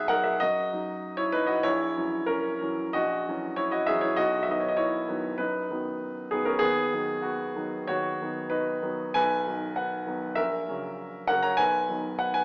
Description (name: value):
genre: classical, romantic character piece for solo piano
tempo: 97 BPM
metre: 4/4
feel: rubato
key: B major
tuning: A4 = 442 Hz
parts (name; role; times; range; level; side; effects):
- warm grand piano; solo; 0.0-12.4 s; A#1 to A#5; -25 LUFS; equal; none
room: moderate recital hall reverb, RT60 1.4 s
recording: AM radio sound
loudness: -25 LUFS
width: side -29 dB against mid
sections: 0.0-12.4 A section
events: none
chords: 0.0 B; 1.6 F#7/A#; 4.2 B; 6.6 B/D#; 9.2 B; 10.4 F#7/A#; 11.6 B